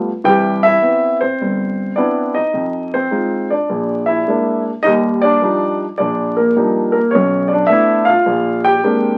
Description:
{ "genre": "solo jazz", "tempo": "105 BPM", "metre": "4/4", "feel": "swing 67% on 8ths, rubato", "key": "unclear", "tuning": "A4 = 440 Hz", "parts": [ { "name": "dark grand piano", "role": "solo", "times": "0.0-9.2 s", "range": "G1 to G5", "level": "-16 LUFS", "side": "equal", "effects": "none" } ], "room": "wet studio reverb, RT60 0.5 s", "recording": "very old 78 rpm record, vinyl crackle", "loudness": "-16 LUFS", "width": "mono", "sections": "0.0-4.9 A section; 4.9-9.2 B section", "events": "none", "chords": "0.3 Cmaj7; 2.5 Fm7; 3.7 Bb7; 4.9 Ebmaj9; 7.1 Bm7b5; 8.3 Bb9" }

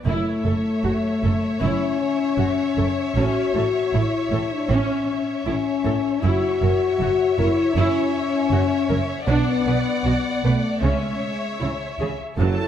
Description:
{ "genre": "cinematic, epic orchestral film score", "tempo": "78 BPM", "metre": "4/4", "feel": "straight", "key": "F# minor", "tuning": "A4 = 442 Hz", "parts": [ { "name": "clear symphonic violin section", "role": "melody", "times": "0.1-12.7 s", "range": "E5 to A5", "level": "-32 LUFS", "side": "left 2 dB", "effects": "none" }, { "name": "warm symphonic violin section", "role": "second line", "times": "0.1-12.7 s", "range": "A4 to D5", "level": "-30 LUFS", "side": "left 3 dB", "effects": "none" }, { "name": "warm symphonic viola section", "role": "accompaniment", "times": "0.1-12.7 s", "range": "F#3 to B4", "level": "-28 LUFS", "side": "right 2 dB", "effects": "none" }, { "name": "mellow French horn section", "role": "sustained chords", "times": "0.1-12.7 s", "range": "G#3 to F#4", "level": "-22 LUFS", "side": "left 5 dB", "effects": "none" }, { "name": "rich symphonic cello section", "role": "bass", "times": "0.1-12.5 s", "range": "F#2 to C#3", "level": "-27 LUFS", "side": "right 3 dB", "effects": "none" }, { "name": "rich symphonic double bass section", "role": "bass", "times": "0.1-12.5 s", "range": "F#1 to C#2", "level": "-26 LUFS", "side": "right 3 dB", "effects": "none" }, { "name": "mellow tuba", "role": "bass", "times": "12.4-12.5 s", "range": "F#1", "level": "-25 LUFS", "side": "right 3 dB", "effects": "none" } ], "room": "wet scoring stage reverb, RT60 2.1 s", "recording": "dark, warm production", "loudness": "-19 LUFS", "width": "side -9 dB against mid", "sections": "0.0-12.4 A section", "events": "none", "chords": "0.1 F#m7; 3.2 A; 6.2 F#7(no3); 9.3 Bm; 10.8 C#m" }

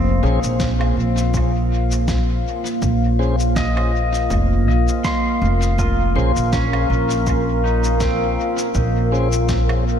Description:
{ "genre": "ambient dub", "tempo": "81 BPM", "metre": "4/4", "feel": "swing 56% on 16ths", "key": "Bb minor", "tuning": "A4 = 440 Hz", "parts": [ { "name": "deep dark ambient pad", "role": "sustained chords", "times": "0.0-10.0 s", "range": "Bb3 to F5", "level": "-21 LUFS", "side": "equal", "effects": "chorus, built-in reverb" }, { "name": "pedal steel guitar", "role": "arpeggios", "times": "0.0-10.0 s", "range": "C4 to C6", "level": "-27 LUFS", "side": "right 1 dB", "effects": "ping-pong delay" }, { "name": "upright bass", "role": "bass", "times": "0.0-10.0 s", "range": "F1 to Bb1", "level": "-19 LUFS", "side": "equal", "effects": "none" }, { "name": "mellow tonewheel organ", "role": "stabs", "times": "0.2-9.3 s", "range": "Db4 to C5", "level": "-30 LUFS", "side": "left 1 dB", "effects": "slow rotary speaker, dub echo" }, { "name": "electronic cabasa, snare drum and woodblock", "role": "drums", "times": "0.4-9.8 s", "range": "none", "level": "-30 LUFS", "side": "equal", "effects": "dub echo" }, { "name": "electronic kick drum", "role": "drums", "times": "0.6-9.7 s", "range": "none", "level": "-25 LUFS", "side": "equal", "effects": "overdrive" } ], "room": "moderate lush hall reverb, RT60 2.8 s", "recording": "dreamy mix soaked in reverb", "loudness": "-16 LUFS", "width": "side -8 dB against mid", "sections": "0.0-10.0 A section", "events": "none", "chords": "0.0 Bbm9" }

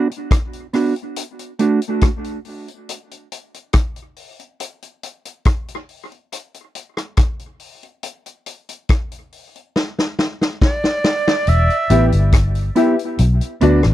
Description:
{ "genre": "dub reggae", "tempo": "70 BPM", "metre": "4/4", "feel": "straight", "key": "E minor", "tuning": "A4 = 439 Hz", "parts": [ { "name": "mellow electric guitar", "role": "accompaniment", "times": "0.0-1.8, 11.9-13.9 s", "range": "A3 to G4", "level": "-19 LUFS", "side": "right 4 dB", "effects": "tape echo" }, { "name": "vintage drum kit", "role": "drums", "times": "0.1-13.9 s", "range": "hi-hat, kick drum, rim click, snare drum", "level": "-18 LUFS", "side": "left 1 dB", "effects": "none" }, { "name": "breathy bright jazz flute", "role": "melody", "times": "10.6-12.1 s", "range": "D5 to E5", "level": "-20 LUFS", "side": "right 2 dB", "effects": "tape echo" }, { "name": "vintage muted fingered electric bass", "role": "bass", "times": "11.5-13.9 s", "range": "E1 to D2", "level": "-14 LUFS", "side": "equal", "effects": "none" }, { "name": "warm grand piano", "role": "stabs", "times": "11.9-13.8 s", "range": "D4 to E5", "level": "-20 LUFS", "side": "left 8 dB", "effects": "tape echo" } ], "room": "little or no reverb", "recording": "dry, close 1970s-style studio recording", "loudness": "-15 LUFS", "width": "side -14 dB against mid", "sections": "0.0-11.5 A section; 11.5-13.9 B section", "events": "break 0.0-11.5; drum fill 9.8-11.5", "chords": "0.0 Bm; 1.2 D; 2.9 N.C.; 11.5 Em; 13.2 Bm" }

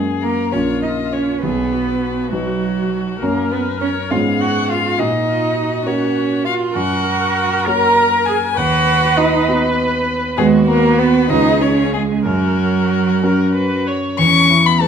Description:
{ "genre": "quick classical-period movement for piano quartet", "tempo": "66 BPM (dotted quarters)", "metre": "6/8", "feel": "rubato", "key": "F# major", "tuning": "A4 = 444 Hz", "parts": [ { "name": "warm violin", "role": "melody", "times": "0.0-14.9 s", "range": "F#4 to C#6", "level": "-20 LUFS", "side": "left 8 dB", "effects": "none" }, { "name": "warm concert grand piano", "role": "accompaniment", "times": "0.0-14.9 s", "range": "A#1 to C#5", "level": "-19 LUFS", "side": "left 1 dB", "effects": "none" }, { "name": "warm cello", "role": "second line", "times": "0.2-14.9 s", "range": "F#3 to A#4", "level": "-18 LUFS", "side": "right 5 dB", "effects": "none" }, { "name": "rich viola", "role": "accompaniment", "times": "0.5-14.2 s", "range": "E#4 to C#5", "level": "-23 LUFS", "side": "right 1 dB", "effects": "none" } ], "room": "wet recital hall reverb, RT60 1.4 s", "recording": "minimal, uncompressed stereo recording", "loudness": "-14 LUFS", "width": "side -7 dB against mid", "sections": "0.0-14.2 A section", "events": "none", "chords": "0.0 F#; 0.5 A#m; 1.4 B; 3.2 F#; 4.1 C#5/G#; 5.0 F#/A#; 6.8 F#; 8.6 B/D#; 11.3 C#7; 12.3 F#; 14.2 E5" }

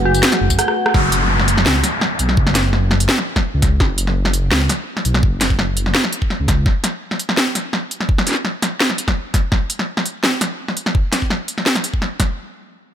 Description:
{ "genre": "half-time drum and bass", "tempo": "168 BPM", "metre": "4/4", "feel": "half-time", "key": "unclear", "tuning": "A4 = 440 Hz", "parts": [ { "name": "dark analog pad", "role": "sustained chords", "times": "0.0-0.9 s", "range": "A3 to B4", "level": "-28 LUFS", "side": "right 1 dB", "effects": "chorus, phaser, sidechain pumping" }, { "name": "dark detuned synth bell", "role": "arpeggios", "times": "0.0-1.0 s", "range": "F#4 to F#5", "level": "-21 LUFS", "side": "right 1 dB", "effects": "chorus, tape echo" }, { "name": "dark detuned saw bass", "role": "bass", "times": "0.0-6.6 s", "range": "F#1 to C#2", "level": "-18 LUFS", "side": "equal", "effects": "tube saturation" }, { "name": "drum and bass drum kit", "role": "drums", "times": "0.1-12.3 s", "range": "hi-hat, rim click, snare drum, tambourine", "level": "-18 LUFS", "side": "equal", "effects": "none" }, { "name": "electronic kick drum", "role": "drums", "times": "0.5-12.3 s", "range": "none", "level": "-17 LUFS", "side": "equal", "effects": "none" }, { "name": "downlifter", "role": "sound effects", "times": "0.9-3.8 s", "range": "none", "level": "-21 LUFS", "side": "left 1 dB", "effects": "none" } ], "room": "light reverb", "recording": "none", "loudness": "-15 LUFS", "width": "side -10 dB against mid", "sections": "0.9-12.4 A section", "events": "drum fill 0.6-0.9; band accent 0.9", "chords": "0.0 F#madd9; 0.9 F#5" }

